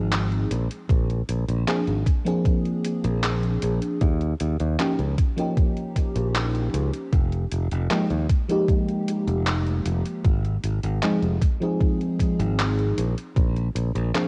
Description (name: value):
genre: vaporwave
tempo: 77 BPM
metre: 4/4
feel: straight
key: unclear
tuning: A4 = 439 Hz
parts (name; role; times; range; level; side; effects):
- FM electric piano with soft pad layer; accompaniment; 0.0-14.3 s; F3 to Ab4; -28 LUFS; equal; phaser, subtle chorus, cassette tape, tape echo
- modern bright fingered electric bass; bass; 0.0-14.1 s; F1 to Eb2; -26 LUFS; equal; none
- detuned 8-bit digital drum machine; drums; 0.1-14.3 s; handclaps, hi-hat; -33 LUFS; equal; studio reverb
- electronic kick drum; drums; 0.9-13.5 s; none; -24 LUFS; equal; studio reverb
room: light reverb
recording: home recording on cassette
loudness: -24 LUFS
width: mono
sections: 0.0-14.3 A section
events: none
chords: 0.0 Ab6; 0.5 Bb9; 4.0 Eb9; 7.1 Fm11; 10.2 Ab6; 13.0 N.C.